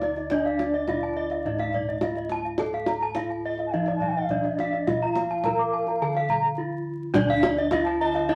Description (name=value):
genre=Balinese gamelan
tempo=105 BPM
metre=4/4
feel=straight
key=D pelog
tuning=A4 = 440 Hz
part: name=gamelan-type bronze metallophone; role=melody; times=0.0-8.3 s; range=D4 to Bb4-20c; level=-32 LUFS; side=equal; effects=none
part: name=bass bansuri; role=second line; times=0.0-8.3 s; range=D5 to Bb5-23c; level=-32 LUFS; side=equal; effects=none
part: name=gamelan-type bronze metallophone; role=arpeggios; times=0.0-8.3 s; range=D5 to D6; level=-32 LUFS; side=equal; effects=none
part: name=gamelan-type bronze metallophone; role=arpeggios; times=0.0-8.2 s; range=D5 to Bb5-20c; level=-32 LUFS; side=equal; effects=none
part: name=gamelan-type bossed gongs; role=bass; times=0.0-8.3 s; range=D2 to A4-30c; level=-35 LUFS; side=equal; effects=none
part: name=kendang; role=percussion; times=0.0-8.2 s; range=none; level=-32 LUFS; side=equal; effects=none
room=wet studio reverb, RT60 0.6 s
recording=vinyl crackle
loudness=-26 LUFS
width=mono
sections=0.0-8.3 A section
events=break 6.3-7.2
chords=none